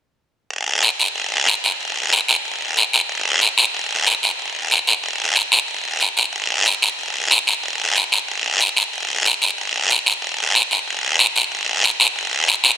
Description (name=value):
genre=latin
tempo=185 BPM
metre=4/4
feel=straight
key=none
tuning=none
part: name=guiro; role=percussion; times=0.5-12.8 s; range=none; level=-15 LUFS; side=equal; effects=none
room=wet huge ambient reverb, RT60 8.2 s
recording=dreamy mix soaked in reverb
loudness=-15 LUFS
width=side -10 dB against mid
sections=0.5-5.7 A section; 5.7-12.8 B section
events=none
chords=none